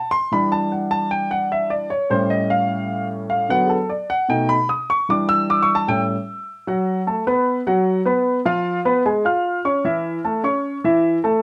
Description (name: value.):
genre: jazz.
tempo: 151 BPM.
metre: 4/4.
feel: straight.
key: unclear.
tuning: A4 = 445 Hz.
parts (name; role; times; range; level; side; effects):
warm baby grand piano; solo; 0.0-11.4 s; A2 to E#6; -20 LUFS; equal; none.
room: moderate studio ambience, RT60 0.5 s.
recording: none.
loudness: -20 LUFS.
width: mono.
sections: 0.0-6.7 A section; 6.7-11.4 B section.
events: grand piano solo 0.0-6.7.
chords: 0.3 Em7; 1.9 Aaug7; 3.5 D6; 4.3 Baug7; 5.1 Em7; 5.9 A7; 6.7 F#madd11; 8.3 C#7; 9.9 A/E.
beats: | 0.32 0.72 1.11 1.51 | 1.91 2.31 2.71 3.10 | 3.50 3.90 4.30 4.69 | 5.09 5.49 5.88 6.28 | 6.68 7.08 7.47 7.87 | 8.27 8.66 9.06 9.46 | 9.86 10.25 10.65 11.04.